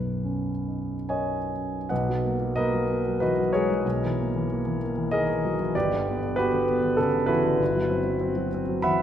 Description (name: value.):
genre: classical, impressionist solo piano.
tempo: 95 BPM.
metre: 3/4.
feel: uneven beats, rubato.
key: unclear.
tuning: A4 = 441 Hz.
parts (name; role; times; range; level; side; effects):
clear concert grand piano; solo; 0.0-9.0 s; G1 to B5; -23 LUFS; equal; none.
room: wet recital hall reverb, RT60 1.6 s.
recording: recorded in a church or concert hall.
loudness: -23 LUFS.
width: side -10 dB against mid.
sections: 0.0-1.9 A section; 1.9-9.0 B section.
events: none.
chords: 0.0 Bmaj9; 1.9 F#13/B; 5.7 Gmaj7; 7.6 Cmaj7#11/G.